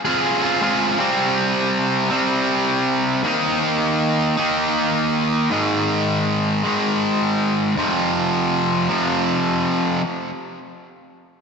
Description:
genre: rock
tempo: 80 BPM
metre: 3/4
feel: straight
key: unclear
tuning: A4 = 440 Hz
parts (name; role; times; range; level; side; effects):
- sludgy distorted guitar; solo; 0.0-10.0 s; F2 to Ab4; -17 LUFS; equal; overdrive, digital delay
room: wet lush hall reverb, RT60 2.8 s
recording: big arena sound, nothing above 7.9 kHz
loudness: -17 LUFS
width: side -5 dB against mid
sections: 1.0-10.0 A section; 10.0-11.4 B section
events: none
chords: 0.0 Fm; 1.0 C5; 3.2 Eb5; 5.5 Ab5; 7.8 F5; 10.0 N.C.

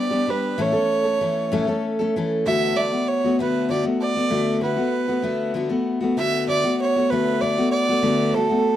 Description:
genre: acoustic folk duo or small band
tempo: 64 BPM (dotted quarters)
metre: 6/8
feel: straight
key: D major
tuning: A4 = 441 Hz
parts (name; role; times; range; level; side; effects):
- rich fiddle; second line; 0.0-8.8 s; A4 to E5; -23 LUFS; right 4 dB; none
- picked steel-string acoustic guitar; accompaniment; 0.0-8.8 s; A2 to A4; -21 LUFS; left 2 dB; none
room: small room ambience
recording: dry, close 1970s-style studio recording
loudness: -19 LUFS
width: side -12 dB against mid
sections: 0.0-2.4 A section; 2.4-8.8 B section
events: fiddle solo 0.0-2.4, 2.4-8.8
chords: 0.0 G; 0.6 A; 2.4 D6

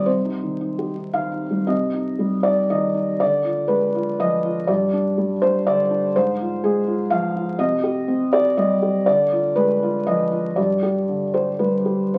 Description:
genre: neoclassical minimalist piano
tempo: 107-126 BPM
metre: 3/4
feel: rubato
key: C harmonic minor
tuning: A4 = 435 Hz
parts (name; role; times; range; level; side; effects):
- felt-muted upright piano; solo; 0.0-12.2 s; G2 to F5; -21 LUFS; equal; none
room: wet studio reverb, RT60 0.8 s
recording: very old 78 rpm record, vinyl crackle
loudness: -21 LUFS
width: mono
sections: 0.0-1.7 A section; 1.7-12.2 B section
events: none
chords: 0.0 Cm; 3.2 Ddim; 4.7 G5; 6.1 Fm/Ab; 7.6 Cm; 9.1 Ddim; 10.6 G

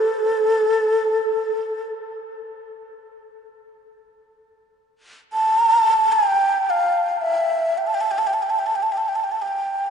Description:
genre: world meditative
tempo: free time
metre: none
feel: none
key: unclear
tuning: A4 = 440 Hz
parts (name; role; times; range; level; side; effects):
- breathy xiao; solo; 0.0-9.9 s; A4 to A5; -18 LUFS; equal; diffuse ambient delay
room: wet church reverb, RT60 3.6 s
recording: dark, warm production, nothing above 10.8 kHz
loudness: -18 LUFS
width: side -6 dB against mid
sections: 0.0-4.1 A section; 4.1-9.9 A section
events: none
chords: none

